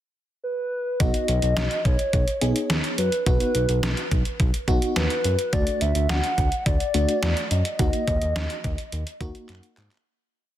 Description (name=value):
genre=synth-pop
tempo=106 BPM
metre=4/4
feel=straight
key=B major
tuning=A4 = 439 Hz
part: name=hollow clarinet-like synth lead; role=melody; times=0.4-9.5 s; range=B4 to F#5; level=-27 LUFS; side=equal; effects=chorus, tape echo
part: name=FM electric piano with tremolo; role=accompaniment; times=1.0-9.8 s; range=A3 to G#4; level=-29 LUFS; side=equal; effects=phaser
part: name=smooth synth bass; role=bass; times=1.0-9.9 s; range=B1 to G#2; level=-24 LUFS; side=equal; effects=none
part: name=detuned 8-bit digital drum machine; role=drums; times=1.0-10.0 s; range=handclaps, hi-hat, kick drum, snare drum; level=-25 LUFS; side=equal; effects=none
room=light reverb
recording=dense, heavily limited modern master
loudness=-21 LUFS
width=side -12 dB against mid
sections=0.0-1.0 pickup bar; 1.0-10.1 verse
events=fade-out 7.8-10.1; drum fill 9.5-10.1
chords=0.0 N.C.; 1.0 B; 5.5 D; 7.8 D#m